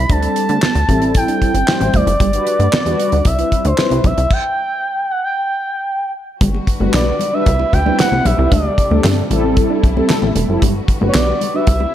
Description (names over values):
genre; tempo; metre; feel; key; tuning
early-eighties boogie funk; 114 BPM; 4/4; straight; G major; A4 = 441 Hz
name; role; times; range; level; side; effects
expressive portamento lead; melody; 0.0-11.9 s; C5 to B5; -19 LUFS; equal; chorus, slapback echo
mellow electric guitar; riff; 0.0-11.9 s; G3 to E4; -24 LUFS; right 5 dB; analog chorus
plucky analog bass; bass; 0.0-11.9 s; E1 to D3; -17 LUFS; equal; none
mellow synth brass; accompaniment; 0.1-11.7 s; G3 to C5; -20 LUFS; left 1 dB; chorus, slapback echo
damped 70s drum kit; drums; 0.1-11.8 s; crash cymbal, handclaps, hi-hat, kick drum, snare drum; -17 LUFS; equal; none
warm studio string section; sustained chords; 6.4-11.9 s; C3 to B4; -27 LUFS; equal; none
congas; percussion; 6.4-11.9 s; none; -25 LUFS; left 6 dB; none
room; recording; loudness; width
moderate scoring stage reverb, RT60 1.7 s, small room ambience; big arena sound; -13 LUFS; side -11 dB against mid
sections
0.0-6.4 A section; 6.4-11.9 B section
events
stop 4.3-6.4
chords
0.1 D7sus4; 0.9 Am7; 2.2 Gmaj7; 3.3 Cmaj7; 4.3 N.C.; 6.4 Gmaj7; 7.5 Cmaj7; 8.5 D7sus4; 9.3 Am7; 10.6 Gmaj7